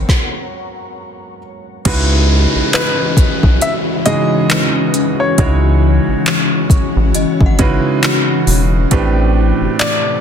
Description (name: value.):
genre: contemporary R&B.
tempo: 68 BPM.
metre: 4/4.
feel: swing 58% on 16ths.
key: C# minor.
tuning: A4 = 440 Hz.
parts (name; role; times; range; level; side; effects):
warm concert grand piano; accompaniment; 0.0-10.2 s; A2 to C#5; -18 LUFS; right 4 dB; none.
ethereal airy pad; sustained chords; 0.0-10.2 s; C3 to G4; -19 LUFS; left 4 dB; ensemble chorus, built-in reverb, phaser.
rubbery square bass; bass; 0.0-9.7 s; E1 to C#2; -14 LUFS; equal; none.
swell and downlifter; sound effects; 0.0-8.9 s; none; -24 LUFS; left 2 dB; none.
smooth R&B drum kit; drums; 0.1-10.0 s; crash cymbal, handclaps, hi-hat, kick drum, snare drum; -15 LUFS; equal; soft clipping on snare.
clear grand piano; melody; 2.7-10.2 s; B4 to E5; -20 LUFS; left 2 dB; tape echo.
synth chime; texture; 2.7-8.7 s; B4 to F#5; -30 LUFS; left 4 dB; ensemble chorus, tape echo.
room: digital ambience.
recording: dense, heavily limited modern master.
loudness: -11 LUFS.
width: side -8 dB against mid.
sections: 0.0-1.9 A section; 1.9-10.2 B section.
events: swell 0.0-1.9; grand piano solo 0.0-1.9; stop 0.1-1.9.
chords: 0.0 G#m11; 1.9 C#m11; 8.9 Am11.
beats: 0.09 0.97 | 1.85 2.74 3.62 4.50 | 5.38 6.26 7.15 8.03 | 8.91 9.79.